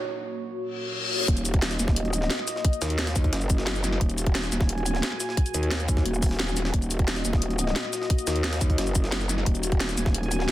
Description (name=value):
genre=dark technical drum and bass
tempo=176 BPM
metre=4/4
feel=straight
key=Eb minor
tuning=A4 = 439 Hz
part: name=dark analog pad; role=sustained chords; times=0.0-10.5 s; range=Bb3 to Ab5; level=-32 LUFS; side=left 1 dB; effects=chorus, phaser, sidechain pumping
part: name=reverse cymbal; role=sound effects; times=0.7-1.3 s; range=none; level=-29 LUFS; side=left 4 dB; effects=none
part: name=growl bass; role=bass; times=1.3-10.5 s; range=Eb1 to Eb2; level=-27 LUFS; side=equal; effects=chorus, overdrive
part: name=drum and bass drum kit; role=drums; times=1.3-10.5 s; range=hi-hat, shaker, snare drum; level=-29 LUFS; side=equal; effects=none
part: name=electronic kick drum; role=drums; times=1.3-10.1 s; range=none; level=-23 LUFS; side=equal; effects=none
part: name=jungle sampler-style drum kit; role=drums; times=1.3-10.5 s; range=hi-hat, snare drum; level=-36 LUFS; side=equal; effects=high-pass filter on hats, high-pass filter on snare
room=light reverb, digital ambience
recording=dense, heavily limited modern master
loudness=-23 LUFS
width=side -14 dB against mid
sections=0.0-1.3 A section; 1.3-10.5 B section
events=break 0.0-1.3; build-up 0.0-1.3; reverse cymbal 0.7-1.3; drop 1.3-10.5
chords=0.0 Ebm (rootless); 1.3 Ebm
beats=0.26 0.60 0.94 | 1.28 1.62 1.96 2.31 | 2.65 2.99 3.33 3.67 | 4.01 4.35 4.69 5.03 | 5.37 5.71 6.05 6.40 | 6.74 7.08 7.42 7.76 | 8.10 8.44 8.78 9.12 | 9.46 9.80 10.15 10.49